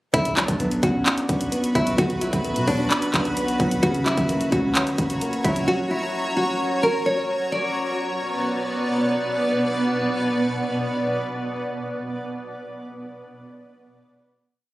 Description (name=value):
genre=hip hop, trap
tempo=130 BPM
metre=4/4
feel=half-time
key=B harmonic minor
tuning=A4 = 438 Hz
part: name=nylon-string guitar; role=melody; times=0.1-8.9 s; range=D4 to D5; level=-25 LUFS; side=equal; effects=digital delay
part: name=dark grand piano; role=accompaniment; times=0.1-6.6 s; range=C#3 to C#5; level=-26 LUFS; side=equal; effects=none
part: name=granular cloud pad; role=sustained chords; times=1.2-11.5 s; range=B2 to C#6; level=-25 LUFS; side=equal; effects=built-in reverb
part: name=long sustained 808-style bass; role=bass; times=0.1-5.7 s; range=F#1 to B2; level=-29 LUFS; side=equal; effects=none
part: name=trap drum kit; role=drums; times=0.1-5.7 s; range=handclaps, hi-hat, kick drum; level=-24 LUFS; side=equal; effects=none
room=moderate recital hall reverb, RT60 1.4 s, digital ambience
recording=recorded on a phone in the room, club reverb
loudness=-20 LUFS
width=side -17 dB against mid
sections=0.1-7.5 hook; 7.5-11.2 final chord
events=none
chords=0.1 Bmadd9; 3.8 F#; 7.5 Bm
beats=| 0.14 0.60 1.06 1.52 | 1.98 2.44 2.91 3.37 | 3.83 4.29 4.75 5.21 | 5.68 6.14 6.60 7.06 | 7.52 7.98 8.45 8.91 | 9.37 9.83 10.29 10.75